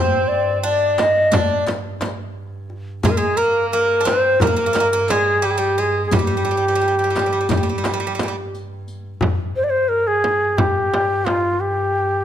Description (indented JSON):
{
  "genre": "Turkish makam ensemble",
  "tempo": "175 BPM (eighths)",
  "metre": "9/8",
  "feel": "straight",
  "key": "G makam kurdi",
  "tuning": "A4 = 440 Hz",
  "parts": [
    { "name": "breathy ney", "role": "melody", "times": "0.0-12.2 s", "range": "F4 to Eb5", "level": "-18 LUFS", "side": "left 1 dB", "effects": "none" },
    { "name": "Greek bouzouki", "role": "second line", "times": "0.0-8.4 s", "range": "G3 to D4", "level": "-24 LUFS", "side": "right 5 dB", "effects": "none" },
    { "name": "rich double bass", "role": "drone", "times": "0.0-12.2 s", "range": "G2", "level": "-28 LUFS", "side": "right 1 dB", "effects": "none" },
    { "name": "riq", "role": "percussion", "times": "0.6-9.0 s", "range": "none", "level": "-30 LUFS", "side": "left 1 dB", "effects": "none" },
    { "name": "darbuka", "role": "percussion", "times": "0.7-12.0 s", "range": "none", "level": "-25 LUFS", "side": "left 3 dB", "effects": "none" },
    { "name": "frame drum", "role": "percussion", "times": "1.0-11.4 s", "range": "none", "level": "-24 LUFS", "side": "right 3 dB", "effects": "none" }
  ],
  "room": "moderate recital hall reverb, RT60 1.3 s",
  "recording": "close, detailed microphones",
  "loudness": "-16 LUFS",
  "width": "side -10 dB against mid",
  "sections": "0.0-9.2 A section; 9.2-12.2 B section",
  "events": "none",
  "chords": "none"
}